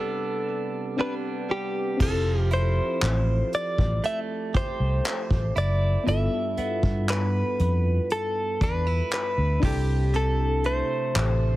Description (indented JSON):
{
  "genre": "contemporary R&B",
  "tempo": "59 BPM",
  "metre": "4/4",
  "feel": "straight",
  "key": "unclear",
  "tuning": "A4 = 440 Hz",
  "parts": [
    { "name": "direct-recorded clean electric guitar", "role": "melody", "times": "0.0-11.6 s", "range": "G4 to E5", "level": "-28 LUFS", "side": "equal", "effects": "digital delay" },
    { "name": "mellow FM electric piano", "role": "accompaniment", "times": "0.0-11.6 s", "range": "B3 to B4", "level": "-33 LUFS", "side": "left 2 dB", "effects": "chorus, tremolo" },
    { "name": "direct-recorded clean electric guitar", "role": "arpeggios", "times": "0.0-11.6 s", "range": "G2 to G4", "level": "-33 LUFS", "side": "right 5 dB", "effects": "digital delay" },
    { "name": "vintage muted fingered electric bass", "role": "bass", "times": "2.0-11.5 s", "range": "F1 to G2", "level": "-24 LUFS", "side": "equal", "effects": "none" },
    { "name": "vintage brush drum kit", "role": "drums", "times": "2.0-11.4 s", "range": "crash cymbal, handclaps, hi-hat, kick drum", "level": "-27 LUFS", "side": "equal", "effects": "none" }
  ],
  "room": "small room ambience",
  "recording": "heavily compressed radio sound, multiband compression",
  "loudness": "-22 LUFS",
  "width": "side -16 dB against mid",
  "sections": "0.0-2.0 A section; 2.0-11.6 B section",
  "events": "break 0.0-2.0",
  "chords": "0.0 Am11/C; 2.0 Fmaj9; 6.1 G13; 9.6 C6"
}